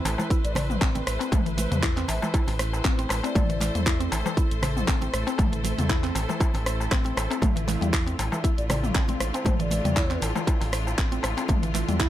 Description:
afro house; 118 BPM; 4/4; swing 54% on 16ths; A minor; A4 = 440 Hz
bright studio string section; sustained chords; 0.0-12.1 s; D3 to C5; -33 LUFS; equal; sidechain pumping
mallet-like synth pluck; arpeggios; 0.0-12.1 s; E3 to E4; -32 LUFS; left 1 dB; chorus, sidechain pumping, ping-pong delay
round analog bass; bass; 0.1-12.1 s; A1 to E2; -29 LUFS; equal; tube saturation, sidechain pumping
house drum kit; drums; 0.1-12.1 s; handclaps, hi-hat, rim click, shaker, toms; -30 LUFS; equal
congas; percussion; 0.1-12.1 s; -35 LUFS; right 2 dB
darbuka; percussion; 0.1-11.6 s; -33 LUFS; left 2 dB
electronic kick drum; drums; 0.3-12.1 s; -24 LUFS; equal
bass bansuri; melody; 0.4-3.7, 8.6-10.3 s; C5 to E5; -36 LUFS; left 2 dB; ping-pong delay
small room ambience; -22 LUFS; side -12 dB against mid
0.0-12.1 A section
0.0 Amadd9; 7.4 Dmadd9/A
0.30 0.81 | 1.32 1.83 2.34 2.85 | 3.36 3.86 4.37 4.88 | 5.39 5.90 6.41 6.92 | 7.42 7.93 8.44 8.95 | 9.46 9.97 10.47 10.98 | 11.49 12.00

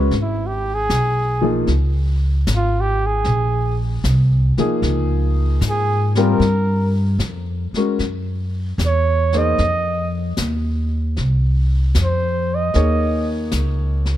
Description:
jazz ballad; 76 BPM; 4/4; swing 68% on 8ths; A4 = 439 Hz
warm grand piano; accompaniment; 0.0-14.2 s; F3 to Db5; -21 LUFS; left 2 dB
upright bass; bass; 0.0-14.2 s; Ab1 to Ab2; -18 LUFS; equal
jazz brush drum kit; drums; 0.1-14.2 s; brushed snare drum, hi-hat, snare drum; -30 LUFS; left 3 dB
warm flugelhorn; melody; 0.2-13.3 s; Fb4 to Eb5; -22 LUFS; right 2 dB
little or no reverb; dark, warm production; -16 LUFS; side -12 dB against mid
0.0-14.2 A section
flugelhorn solo 0.0-14.2
0.1 Abmadd9; 1.7 Db5; 3.3 Bbm9; 6.4 Gm7b5; 8.0 Gb9; 9.6 F5; 12.7 Eb5
| 0.11 0.90 1.68 2.47 | 3.25 4.04 4.83 5.61 | 6.40 7.20 7.99 8.79 | 9.59 10.38 11.18 11.96 | 12.75 13.53

